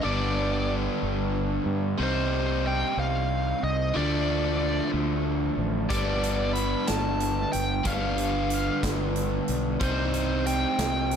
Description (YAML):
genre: indie rock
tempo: 61 BPM (dotted quarters)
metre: 6/8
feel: straight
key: unclear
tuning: A4 = 440 Hz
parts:
  - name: biting lead guitar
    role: melody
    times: 0.0-11.2 s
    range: C5 to B5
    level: -30 LUFS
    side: equal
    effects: overdrive, slapback echo
  - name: overdriven electric guitar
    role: riff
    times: 0.0-11.2 s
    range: G2 to Eb4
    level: -27 LUFS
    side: right 1 dB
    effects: none
  - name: fuzz fingered electric bass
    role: bass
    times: 0.0-11.2 s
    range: G1 to G2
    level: -29 LUFS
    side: equal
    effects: overdrive
  - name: big rock drum kit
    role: drums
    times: 5.9-11.2 s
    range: hi-hat, kick drum, snare drum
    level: -33 LUFS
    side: equal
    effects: none
room: light reverb, studio ambience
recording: none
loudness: -24 LUFS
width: side -7 dB against mid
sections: 0.0-11.2 A section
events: none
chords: 0.0 G; 2.0 Cm; 3.9 Dm; 5.9 G; 9.8 Cm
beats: | 0.04 1.01 | 1.99 2.97 | 3.95 4.93 | 5.91 6.88 | 7.86 8.84 | 9.82 10.80